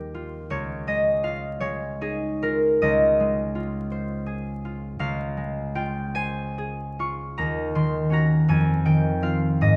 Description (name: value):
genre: classical, solo harp piece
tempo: 46-56 BPM (dotted quarters)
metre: 6/8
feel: rubato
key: Db lydian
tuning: A4 = 440 Hz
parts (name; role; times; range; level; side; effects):
- concert harp; solo; 0.0-9.8 s; Db2 to Db6; -24 LUFS; equal; none
room: wet recital hall reverb, RT60 1.4 s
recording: dark, warm production, vinyl crackle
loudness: -25 LUFS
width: mono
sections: 0.0-9.8 A section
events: none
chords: 0.0 Ebadd9; 0.5 Dbadd9; 2.8 Fm7/Db; 5.0 Dbmaj7; 7.4 Ebm7; 8.5 Fm7